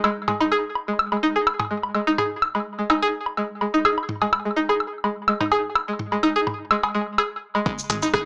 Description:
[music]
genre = minimal techno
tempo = 126 BPM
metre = 4/4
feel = swing 54% on 16ths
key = unclear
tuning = A4 = 441 Hz
[part]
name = string-like resonator pluck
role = riff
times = 0.0-8.2 s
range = G#3 to G#4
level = -22 LUFS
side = equal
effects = chorus, sidechain pumping, tape echo
[part]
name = electronic woodblock, toms and cowbell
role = percussion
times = 0.0-8.1 s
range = none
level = -23 LUFS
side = equal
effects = tape echo
[part]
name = electronic kick drum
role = drums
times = 7.7-8.2 s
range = none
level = -28 LUFS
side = equal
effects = none
[part]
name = minimal click drum kit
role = drums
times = 7.8-8.2 s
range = hi-hat, rim click, shaker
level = -23 LUFS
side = equal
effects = low-pass filter on perc, low-pass filter on hats, low-pass filter on snare
[part]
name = punchy sub bass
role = bass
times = 7.9-8.1 s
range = G#1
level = -36 LUFS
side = equal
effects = sidechain pumping
[sound]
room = wet small room reverb, RT60 0.6 s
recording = small speaker sound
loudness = -20 LUFS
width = side -36 dB against mid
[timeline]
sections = 0.0-7.7 A section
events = none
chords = 0.0 G#5

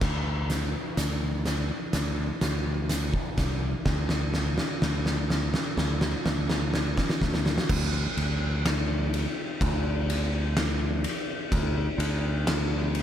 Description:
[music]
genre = post-rock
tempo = 63 BPM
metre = 4/4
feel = straight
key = unclear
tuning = A4 = 438 Hz
[part]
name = growling fingered electric bass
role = bass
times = 0.0-13.0 s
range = C2 to D2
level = -28 LUFS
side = equal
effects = overdrive
[part]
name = oversized low-tuned drum kit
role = drums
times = 0.0-13.0 s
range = crash cymbal, hi-hat, kick drum, ride cymbal, snare drum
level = -27 LUFS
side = equal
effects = none
[sound]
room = light reverb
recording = none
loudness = -25 LUFS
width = side -10 dB against mid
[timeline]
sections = 0.0-7.7 A section; 7.7-13.0 B section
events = build-up 0.0-7.7; drum fill 0.0-7.7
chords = none

